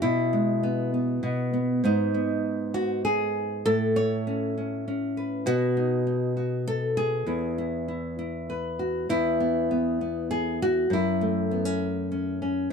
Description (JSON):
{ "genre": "folk, solo fingerstyle acoustic guitar", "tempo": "99 BPM", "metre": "3/4", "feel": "straight", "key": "E major", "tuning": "A4 = 444 Hz", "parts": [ { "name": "nylon-string guitar", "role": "solo", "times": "0.0-12.7 s", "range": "E2 to C#5", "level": "-24 LUFS", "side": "equal", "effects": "none" } ], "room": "light reverb", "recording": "dark, warm production", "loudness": "-24 LUFS", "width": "side -6 dB against mid", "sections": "0.0-9.1 A section; 9.1-12.7 A section", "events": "none", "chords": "0.0 E/B; 1.2 N.C.; 1.8 G#m; 3.7 Aadd9; 5.5 B; 7.3 Eadd9; 10.9 F#m7", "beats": "| 0.03 0.63 1.24 | 1.84 2.45 3.06 | 3.66 4.26 4.87 | 5.47 6.07 6.67 | 7.27 7.88 8.49 | 9.10 9.70 10.31 | 10.91 11.51 12.11 | 12.71" }